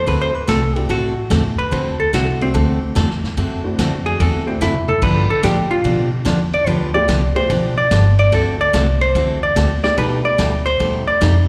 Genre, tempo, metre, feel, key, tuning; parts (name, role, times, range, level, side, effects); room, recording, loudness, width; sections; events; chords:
country, western swing; 145 BPM; 4/4; swing 67% on 8ths; D mixolydian; A4 = 441 Hz
vintage hollow-body jazz guitar; melody; 0.0-11.5 s; C4 to D5; -21 LUFS; equal; slapback echo
upright bass; bass; 0.0-11.5 s; G1 to B2; -21 LUFS; equal
picked steel-string acoustic guitar; accompaniment; 0.1-11.3 s; B2 to A4; -23 LUFS; equal; slapback echo
vintage drum kit; drums; 0.1-11.3 s; crash cymbal, hi-hat, kick drum, ride cymbal, snare drum, toms; -28 LUFS; equal
honky-tonk upright piano; accompaniment; 0.8-10.4 s; A3 to G4; -27 LUFS; equal; slapback echo
moderate club reverb, RT60 0.5 s; live gig heard through the venue's PA, recital hall reverb; -17 LUFS; mono
0.0-11.5 A section
hollow-body jazz guitar solo 0.0-11.5; drum fill 4.6-5.0
0.0 D9; 5.0 G9; 8.3 D9; 10.0 B7alt